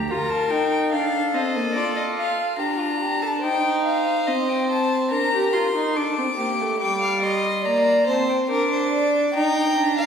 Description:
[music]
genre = classical, baroque-style fugue for string quartet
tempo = 71 BPM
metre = 4/4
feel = straight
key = G minor from 6.8 s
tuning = A4 = 438 Hz
[part]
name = rich violin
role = melody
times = 0.0-10.1 s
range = D5 to D6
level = -24 LUFS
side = left 3 dB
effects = none
[part]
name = rich viola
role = accompaniment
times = 0.0-10.1 s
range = G3 to G4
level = -24 LUFS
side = right 2 dB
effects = none
[part]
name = rich violin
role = second line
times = 0.1-10.1 s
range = F4 to G5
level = -24 LUFS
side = left 1 dB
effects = none
[sound]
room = wet scoring stage reverb, RT60 1.4 s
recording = heard from further back in the room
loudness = -19 LUFS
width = side -7 dB against mid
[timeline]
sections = 0.0-6.8 A section; 6.8-10.1 B section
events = none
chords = 0.1 Bb; 1.8 Dm/F; 3.4 Eb; 5.1 Bb/D; 6.8 Gm; 8.5 Bb/D

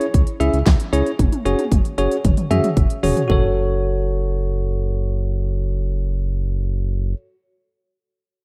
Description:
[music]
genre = synth-pop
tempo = 114 BPM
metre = 4/4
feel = straight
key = F# minor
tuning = A4 = 441 Hz
[part]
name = bell-like tine electric piano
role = accompaniment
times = 0.0-7.2 s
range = C#4 to E5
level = -25 LUFS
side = equal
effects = none
[part]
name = pop drum kit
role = drums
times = 0.0-3.4 s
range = handclaps, hi-hat, kick drum, snare drum, toms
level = -20 LUFS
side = equal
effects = none
[part]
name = round analog bass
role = bass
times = 0.1-7.1 s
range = E1 to F#2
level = -23 LUFS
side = equal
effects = none
[sound]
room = light reverb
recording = rough home demo mix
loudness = -20 LUFS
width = mono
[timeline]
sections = 0.0-3.3 A section; 3.3-7.5 B section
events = drum fill 1.2-3.3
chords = 0.0 C#m; 1.2 F#sus2; 3.3 F#m

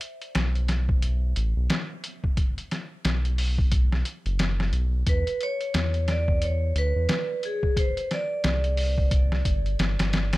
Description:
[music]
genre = trip hop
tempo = 89 BPM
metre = 4/4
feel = swing 60% on 16ths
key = unclear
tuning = A4 = 440 Hz
[part]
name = trip hop sampler-style drum kit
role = drums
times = 0.0-10.4 s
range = hi-hat, kick drum, snare drum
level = -26 LUFS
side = equal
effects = none
[part]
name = round analog bass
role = bass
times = 0.4-10.4 s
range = F#1 to E2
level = -24 LUFS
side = equal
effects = none
[part]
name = vibraphone with medium hard mallets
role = melody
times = 5.1-9.1 s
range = G#4 to D5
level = -30 LUFS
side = right 1 dB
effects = vintage 12-bit sampler grit, tape echo
[sound]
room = little or no reverb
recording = none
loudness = -23 LUFS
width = side -19 dB against mid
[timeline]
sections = 0.0-10.4 A section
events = none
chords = 0.0 B5; 5.1 E5; 7.8 Csus2

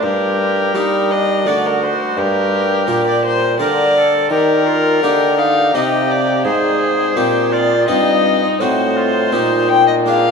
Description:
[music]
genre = classical, baroque-style sonata movement with continuo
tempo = 84 BPM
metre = 3/4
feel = straight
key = Eb major from 4.3 s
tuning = A4 = 440 Hz
[part]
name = warm violin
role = melody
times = 0.0-10.3 s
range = Bb4 to G5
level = -16 LUFS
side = left 5 dB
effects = none
[part]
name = clear oboe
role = second line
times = 0.0-10.3 s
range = D4 to Bb4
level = -20 LUFS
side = right 2 dB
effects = none
[part]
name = harpsichord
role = accompaniment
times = 0.0-10.3 s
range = G2 to Ab4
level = -21 LUFS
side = equal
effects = none
[part]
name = mellow bassoon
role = bass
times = 0.0-10.3 s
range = G2 to G3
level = -18 LUFS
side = right 3 dB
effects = none
[sound]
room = wet cathedral reverb, RT60 5.6 s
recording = in a vast, echoing space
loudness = -13 LUFS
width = side -5 dB against mid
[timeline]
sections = 0.0-10.3 A section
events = none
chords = 0.0 Gm; 1.5 D7; 2.2 Gm; 4.3 Eb; 5.7 Cm; 6.4 Fm7/Ab; 8.6 Adim7; 9.3 Eb/Bb

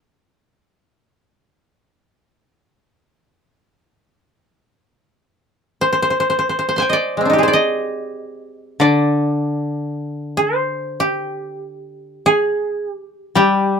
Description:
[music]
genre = japanese traditional, Japanese chamber music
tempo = free time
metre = none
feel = none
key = C hirajoshi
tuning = A4 = 439 Hz
[part]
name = koto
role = melody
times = 0.0-13.8 s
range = Ab3 to C6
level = -17 LUFS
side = right 1 dB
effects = none
[part]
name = koto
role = accompaniment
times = 8.8-13.8 s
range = D3 to G3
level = -18 LUFS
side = left 2 dB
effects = none
[sound]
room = light reverb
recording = close, detailed microphones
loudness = -16 LUFS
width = side -6 dB against mid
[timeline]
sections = 0.0-4.7 A section; 4.7-13.8 A section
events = none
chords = none

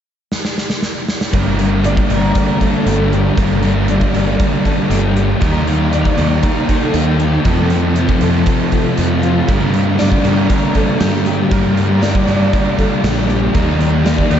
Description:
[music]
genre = rock, shoegaze and dream pop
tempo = 118 BPM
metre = 4/4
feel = straight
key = G minor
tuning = A4 = 440 Hz
[part]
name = gated 80s drum kit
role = drums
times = 0.3-14.4 s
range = hi-hat, kick drum, snare drum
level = -19 LUFS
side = equal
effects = none
[part]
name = picked twelve-string acoustic guitar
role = arpeggios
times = 1.3-14.4 s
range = F4 to D5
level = -23 LUFS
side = left 2 dB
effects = analog chorus, diffuse ambient delay
[part]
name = crunchy overdriven guitar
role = riff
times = 1.3-14.4 s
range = F2 to Eb4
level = -19 LUFS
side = right 6 dB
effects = reverse reverb
[part]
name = thick fuzz guitar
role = riff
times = 1.3-14.4 s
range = F2 to Eb4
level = -17 LUFS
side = left 5 dB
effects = distortion, lush chorus
[part]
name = fuzz fingered electric bass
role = bass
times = 1.3-14.4 s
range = G1 to G2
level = -17 LUFS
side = equal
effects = overdrive
[sound]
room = wet huge ambient reverb, RT60 7.8 s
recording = dreamy mix soaked in reverb, nothing above 7.8 kHz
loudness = -12 LUFS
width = side -9 dB against mid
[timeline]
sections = 0.0-1.3 A section; 1.3-14.4 B section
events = drum fill 0.3-1.3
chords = 0.0 N.C.; 1.3 Gm; 5.4 Ebmaj7; 7.5 Fadd9; 9.5 Gm; 13.6 Ebmaj7

